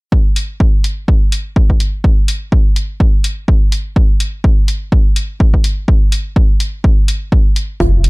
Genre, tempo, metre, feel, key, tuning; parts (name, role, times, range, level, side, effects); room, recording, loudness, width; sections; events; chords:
minimal techno; 125 BPM; 4/4; swing 56% on 16ths; A4 = 441 Hz
electronic kick drum; drums; 0.1-7.9 s; -11 LUFS; equal
electronic hi-hat; drums; 0.4-8.1 s; -22 LUFS; left 1 dB
hollow square pluck; riff; 7.8-7.9 s; F4; -18 LUFS; right 1 dB; chorus, sidechain pumping
woody FM bass; bass; 7.8-8.1 s; F1; -12 LUFS; equal; sidechain pumping
hi-hat; drums; 7.8-8.1 s; -35 LUFS; right 4 dB; sidechain pumping on hats, high-pass filter on hats, high-pass filter on room
digital ambience; dark, warm production; -11 LUFS; side -27 dB against mid
0.1-8.1 A section
0.1 F5